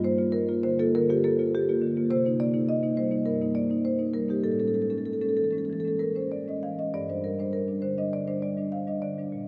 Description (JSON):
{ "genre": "classical, contemporary piece for solo marimba", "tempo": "101 BPM", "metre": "4/4", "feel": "rubato", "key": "unclear", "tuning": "A4 = 440 Hz", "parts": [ { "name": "marimba with soft mallets", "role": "solo", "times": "0.0-9.5 s", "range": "G2 to F5", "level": "-27 LUFS", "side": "equal", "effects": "none" } ], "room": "wet cathedral reverb, RT60 5.7 s", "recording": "none", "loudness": "-27 LUFS", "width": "mono", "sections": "0.0-9.5 A section", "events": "none", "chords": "0.0 Gm7; 2.1 Cm7; 4.5 Amaj7; 6.9 G5" }